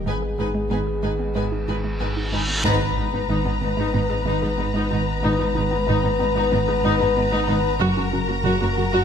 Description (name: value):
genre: cinematic, hybrid orchestral and electronic film score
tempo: 93 BPM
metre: 4/4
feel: straight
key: G# minor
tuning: A4 = 440 Hz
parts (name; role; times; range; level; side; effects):
- mellow French horn section; sustained chords; 0.0-9.0 s; A#3 to B4; -26 LUFS; left 3 dB; none
- punchy sub bass; bass; 0.0-9.0 s; F#1 to G#1; -28 LUFS; equal; none
- warm studio violin section; melody; 0.1-9.0 s; G#5 to A#5; -30 LUFS; left 5 dB; none
- dark symphonic violin section; second line; 0.1-9.0 s; A#4 to B4; -31 LUFS; left 4 dB; none
- warm symphonic viola section; accompaniment; 0.1-9.0 s; D#4 to F#4; -28 LUFS; left 1 dB; none
- woody wave-folded pluck; arpeggios; 0.1-9.0 s; F#3 to G#4; -30 LUFS; right 2 dB; chorus
- warm symphonic cello section; bass; 0.1-9.0 s; F#2 to G#2; -27 LUFS; right 2 dB; none
- warm symphonic double bass section; bass; 0.1-8.8 s; F#1 to G#1; -28 LUFS; right 4 dB; none
- reverse cymbal and impact; sound effects; 1.7-5.2 s; none; -30 LUFS; right 1 dB; none
room: moderate scoring stage reverb, RT60 1.6 s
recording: none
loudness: -19 LUFS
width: side -8 dB against mid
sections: 0.0-2.6 A section; 2.6-9.0 B section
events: reverse cymbal 1.7-2.6; band accent 2.6-3.3; impact 2.6-5.2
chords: 0.1 G#m; 7.8 F#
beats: | 0.06 0.71 1.35 2.00 | 2.65 3.29 3.94 4.58 | 5.22 5.87 6.51 7.16 | 7.81 8.45